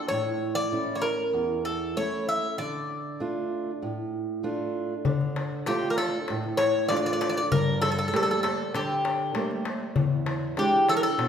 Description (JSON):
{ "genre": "greek folk, Greek bouzouki band", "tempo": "98 BPM", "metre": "4/4", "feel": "straight", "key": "D harmonic minor", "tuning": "A4 = 440 Hz", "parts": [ { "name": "Greek bouzouki", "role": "melody", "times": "0.0-11.3 s", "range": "G4 to E5", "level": "-26 LUFS", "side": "left 1 dB", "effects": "none" }, { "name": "fingerpicked steel-string acoustic guitar", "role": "accompaniment", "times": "0.1-11.3 s", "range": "E2 to F4", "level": "-29 LUFS", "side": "right 2 dB", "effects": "none" }, { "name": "darbuka", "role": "percussion", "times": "5.0-11.3 s", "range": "none", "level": "-29 LUFS", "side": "left 4 dB", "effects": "none" } ], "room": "wet recital hall reverb, RT60 1.6 s", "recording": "recorded in a church or concert hall", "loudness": "-24 LUFS", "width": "side -8 dB against mid", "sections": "0.0-5.1 A section; 5.1-11.3 B section", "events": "none", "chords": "0.1 A; 2.6 Dm; 7.5 Gmadd9; 10.0 E7", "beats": "| 0.11 0.73 1.35 1.97 | 2.59 3.21 3.83 4.44 | 5.06 5.67 6.29 6.90 | 7.52 8.13 8.74 9.35 | 9.96 10.57 11.18" }